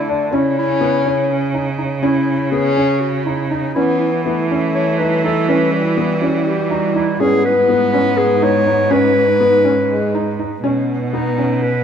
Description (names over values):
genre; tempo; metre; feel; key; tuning
contemporary instrumental, chamber music in an uneven meter; 245 BPM (eighths); 7/8; straight; unclear; A4 = 439 Hz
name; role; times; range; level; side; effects
warm clarinet; melody; 0.0-11.8 s; C#4 to C#5; -18 LUFS; left 1 dB; none
warm French horn; second line; 0.0-11.8 s; G3 to C#4; -20 LUFS; left 3 dB; none
clear cello; bass; 0.0-11.8 s; G#2 to E3; -21 LUFS; right 5 dB; none
felt-muted upright piano; arpeggios; 0.1-11.7 s; B3 to D#4; -20 LUFS; left 1 dB; none
ethereal airy pad; sustained chords; 5.1-10.6 s; G3 to B4; -24 LUFS; right 5 dB; ensemble chorus, built-in reverb
room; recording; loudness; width
moderate plate reverb, RT60 3.3 s; heard from further back in the room; -14 LUFS; side -8 dB against mid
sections
0.0-10.6 A section; 10.6-11.8 B section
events
none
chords
0.3 C#m; 3.8 Emadd9; 7.2 G#m; 10.6 Badd9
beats
0.08 | 0.32 0.57 0.81 1.05 1.30 1.54 1.78 | 2.03 2.27 2.52 2.76 3.01 3.26 3.50 | 3.75 4.00 4.25 4.50 4.74 4.99 5.24 | 5.48 5.73 5.97 6.22 6.46 6.71 6.95 | 7.20 7.44 7.68 7.93 8.17 8.42 8.66 | 8.91 9.15 9.40 9.65 9.89 10.14 10.39 | 10.64 10.89 11.14 11.39 11.63